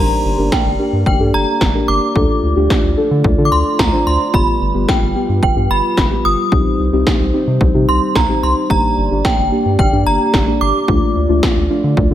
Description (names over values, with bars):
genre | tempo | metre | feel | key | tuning
synth-pop | 110 BPM | 4/4 | straight | G minor | A4 = 438 Hz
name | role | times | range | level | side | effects
synth chime | melody | 0.0-11.1 s | G5 to Eb6 | -18 LUFS | right 1 dB | ensemble chorus, phaser, tape echo
muted felt-like synth keys | accompaniment | 0.0-12.1 s | A3 to C5 | -19 LUFS | left 1 dB | chorus
glass harmonica | sustained chords | 0.0-12.1 s | G3 to D5 | -22 LUFS | equal | none
round analog bass | bass | 0.0-12.1 s | G1 to D3 | -18 LUFS | equal | none
80s electronic pad drums | drums | 0.5-12.1 s | kick drum, snare drum | -17 LUFS | equal | none
room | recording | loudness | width
light reverb | none | -12 LUFS | side -12 dB against mid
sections
0.0-12.1 A section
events
none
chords
0.0 Gm; 2.2 Dm; 4.3 G7; 6.5 Cm; 8.7 Gm; 10.9 Dm